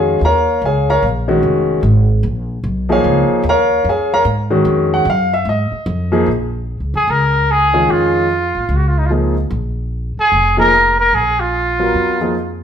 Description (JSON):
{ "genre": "modal jazz", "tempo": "148 BPM", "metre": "4/4", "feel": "swing 64% on 8ths", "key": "Bb phrygian", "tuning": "A4 = 444 Hz", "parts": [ { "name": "warm concert grand piano", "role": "accompaniment", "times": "0.0-12.3 s", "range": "Eb3 to Bb5", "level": "-15 LUFS", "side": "left 1 dB", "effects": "none" }, { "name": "upright bass", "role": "bass", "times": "0.0-12.6 s", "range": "F1 to Ab2", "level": "-18 LUFS", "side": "equal", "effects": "none" }, { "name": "warm trumpet", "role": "melody", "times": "7.0-12.6 s", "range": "Eb4 to Bb4", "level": "-14 LUFS", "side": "equal", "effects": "none" } ], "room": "moderate large studio reverb, RT60 1.0 s", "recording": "band playing live in one room", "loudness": "-13 LUFS", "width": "side -8 dB against mid", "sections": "0.0-6.3 A section; 6.3-12.6 B section", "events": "none", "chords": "0.0 Bbm7", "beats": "0.21 0.62 1.02 | 1.42 1.83 2.23 2.64 | 3.04 3.44 3.85 4.25 | 4.65 5.06 5.46 5.87 | 6.27 6.67 7.08 7.48 | 7.89 8.29 8.70 9.10 | 9.51 9.91 10.32 10.72 | 11.13 11.54 11.94 12.35" }